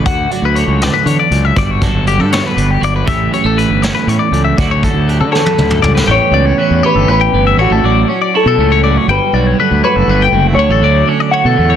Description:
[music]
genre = math rock and midwest emo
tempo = 80 BPM (dotted quarters)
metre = 6/8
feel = straight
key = D major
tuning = A4 = 440 Hz
[part]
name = twelve-string electric guitar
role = accompaniment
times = 0.0-11.8 s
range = D2 to G4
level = -16 LUFS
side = right 9 dB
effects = spring reverb
[part]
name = twelve-string electric guitar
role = arpeggios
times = 0.0-11.8 s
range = G4 to G5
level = -16 LUFS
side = left 11 dB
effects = spring reverb, plate reverb
[part]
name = fuzz fingered electric bass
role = bass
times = 0.1-11.8 s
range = F#1 to D3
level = -14 LUFS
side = equal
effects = overdrive
[part]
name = vintage brush drum kit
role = drums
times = 0.1-6.1 s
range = hi-hat, kick drum, snare drum, toms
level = -18 LUFS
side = equal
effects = none
[part]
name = electric guitar through a small old amp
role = melody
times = 5.3-11.8 s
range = F#4 to F#5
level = -15 LUFS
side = left 1 dB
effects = spring reverb, slapback echo, plate reverb
[sound]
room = light reverb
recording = dense, heavily limited modern master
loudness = -9 LUFS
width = side -9 dB against mid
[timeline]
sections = 0.0-6.1 A section; 6.1-11.8 B section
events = drum fill 5.3-6.1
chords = 0.1 Dmaj7; 1.6 Gmaj7; 3.1 A7; 4.6 Dmaj7; 6.1 A9; 7.6 Dmaj9/A; 9.1 Gmaj9; 10.6 Dmaj9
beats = | 0.06 0.82 | 1.57 2.32 | 3.08 3.83 | 4.58 5.33 | 6.08 6.84 | 7.59 8.34 | 9.09 9.84 | 10.58 11.33

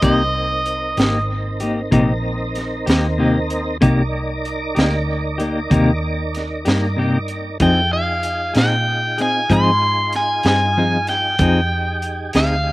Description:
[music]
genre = slow blues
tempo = 63 BPM (dotted quarters)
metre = 12/8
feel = straight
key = C minor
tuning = A4 = 437 Hz
[part]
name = crunchy overdriven guitar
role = melody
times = 0.0-1.3, 7.6-12.7 s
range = Eb5 to C6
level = -19 LUFS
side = equal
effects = spring reverb
[part]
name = clean electric guitar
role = accompaniment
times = 0.0-12.6 s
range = C3 to Ab4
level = -19 LUFS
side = left 2 dB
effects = tremolo
[part]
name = tonewheel organ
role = sustained chords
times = 0.0-12.7 s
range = C4 to D5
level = -26 LUFS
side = right 1 dB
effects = chorus vibrato, slow rotary speaker
[part]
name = vintage muted fingered electric bass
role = bass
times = 0.0-12.7 s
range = Ab1 to Bb2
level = -22 LUFS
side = equal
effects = none
[part]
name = crunchy breakbeat drum kit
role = drums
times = 0.0-12.5 s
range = hi-hat, kick drum, snare drum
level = -20 LUFS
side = equal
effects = none
[sound]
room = little or no reverb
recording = recorded outdoors, with no room sound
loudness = -16 LUFS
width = side -18 dB against mid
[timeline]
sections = 0.0-12.7 A section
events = none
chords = 0.0 Cm7; 7.6 Fm7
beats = | 0.03 0.98 1.93 2.87 | 3.82 4.77 5.72 6.66 | 7.61 8.56 9.51 10.45 | 11.40 12.35

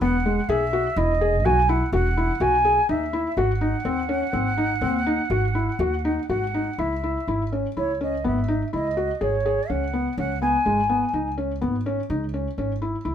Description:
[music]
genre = contemporary instrumental, chamber music in an uneven meter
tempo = 124 BPM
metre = 7/4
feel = straight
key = C# minor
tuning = A4 = 440 Hz
[part]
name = mellow jazz flute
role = melody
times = 0.0-11.3 s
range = C#5 to G#5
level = -25 LUFS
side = right 2 dB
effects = none
[part]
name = felt-muted upright piano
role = arpeggios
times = 0.0-13.1 s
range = G#3 to G#4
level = -25 LUFS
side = left 3 dB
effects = none
[part]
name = upright bass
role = bass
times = 0.0-13.1 s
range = E1 to D#2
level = -27 LUFS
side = right 1 dB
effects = none
[sound]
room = light reverb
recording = none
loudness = -21 LUFS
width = side -9 dB against mid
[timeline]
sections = 0.0-6.8 A section; 6.8-13.1 B section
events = none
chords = 0.0 Emaj7; 3.4 G#7(no3); 6.8 C#m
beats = | 0.01 0.49 0.96 1.45 1.93 2.41 2.89 | 3.37 3.85 4.34 4.82 5.31 5.80 6.30 | 6.79 7.28 7.76 8.25 8.73 9.21 9.69 | 10.18 10.66 11.14 11.62 12.10 12.58 13.05

